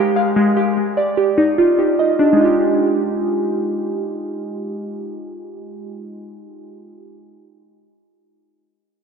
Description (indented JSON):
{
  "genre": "hip hop",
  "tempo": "148 BPM",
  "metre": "4/4",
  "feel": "half-time",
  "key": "F dorian",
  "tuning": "A4 = 440 Hz",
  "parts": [
    { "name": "Celtic harp", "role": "melody", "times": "0.0-1.1 s", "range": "Bb4 to C5", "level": "-35 LUFS", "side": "right 3 dB", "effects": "none" },
    { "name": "glassy digital keys", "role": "arpeggios", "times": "0.0-7.0 s", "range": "Ab3 to F5", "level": "-16 LUFS", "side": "right 1 dB", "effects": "chorus, tape echo" }
  ],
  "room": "wet plate reverb, RT60 3.3 s",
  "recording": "dreamy mix soaked in reverb, low-pass filter, nothing above 7.6 kHz",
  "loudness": "-15 LUFS",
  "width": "side -6 dB against mid",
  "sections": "0.0-2.4 A section; 2.4-5.6 B section",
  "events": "filter sweep 0.0-2.4",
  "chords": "0.0 Fmadd9; 0.8 Ebmaj9; 2.4 Fm9"
}